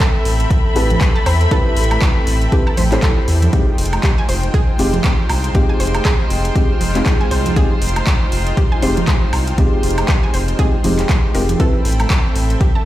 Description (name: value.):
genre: deep house.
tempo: 119 BPM.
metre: 4/4.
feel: swing 58% on 16ths.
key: unclear.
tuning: A4 = 440 Hz.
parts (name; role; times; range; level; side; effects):
warm analog pad; sustained chords; 0.0-12.8 s; Ab3 to B5; -27 LUFS; equal; chorus, sidechain pumping.
analog pluck; arpeggios; 0.0-12.8 s; G4 to A5; -28 LUFS; right 2 dB; chorus, sidechain pumping, digital delay.
deep house drum kit; drums; 0.0-12.7 s; handclaps, hi-hat, woodblock; -24 LUFS; equal; overdrive, studio reverb.
electronic kick drum; drums; 0.0-12.7 s; none; -16 LUFS; equal; overdrive, studio reverb.
dark chamber string section; texture; 0.0-12.8 s; F4 to B5; -25 LUFS; equal; sidechain pumping.
round analog bass; bass; 0.3-12.6 s; F1 to E2; -17 LUFS; equal; sidechain pumping.
felt-muted upright piano; stabs; 0.8-11.7 s; Ab3 to C5; -21 LUFS; left 1 dB; sidechain pumping, tape echo.
congas; percussion; 0.8-12.1 s; none; -25 LUFS; right 3 dB; none.
room: digital ambience.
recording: played on a big sound system in a bare room, stone room reverb.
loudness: -13 LUFS.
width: side -14 dB against mid.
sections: 0.0-12.8 A section.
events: none.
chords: 0.0 Am9; 3.5 Fm9; 11.6 Am9.